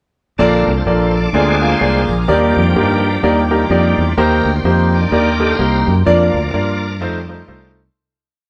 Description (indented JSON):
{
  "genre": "uptempo gospel",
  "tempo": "127 BPM",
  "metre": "4/4",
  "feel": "swing 59% on 8ths",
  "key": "Bb major",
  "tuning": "A4 = 440 Hz",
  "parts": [
    { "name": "bright grand piano", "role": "accompaniment", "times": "0.4-7.8 s", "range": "Bb2 to F5", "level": "-17 LUFS", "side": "equal", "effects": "none" },
    { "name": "bright tonewheel organ", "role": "sustained chords", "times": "0.4-7.7 s", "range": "D3 to D5", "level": "-22 LUFS", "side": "equal", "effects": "slow rotary speaker, chorus vibrato" },
    { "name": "warm chamber string section", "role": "sustained chords", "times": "0.4-7.9 s", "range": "Eb4 to D6", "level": "-34 LUFS", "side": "equal", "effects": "none" },
    { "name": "fingered electric bass", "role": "bass", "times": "0.4-7.9 s", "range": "Bb1 to G2", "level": "-19 LUFS", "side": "equal", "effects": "none" }
  ],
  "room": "moderate stone room reverb, RT60 1.0 s",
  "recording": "band playing live in one room",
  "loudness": "-14 LUFS",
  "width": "mono",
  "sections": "0.4-7.9 breakdown",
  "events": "tonewheel organ solo 0.4-7.9; fade-out 6.1-7.9",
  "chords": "0.4 Bbmaj7; 1.3 Bb7/D; 2.3 Ebmaj7; 4.2 Cm7; 6.1 Bb; 7.0 F7"
}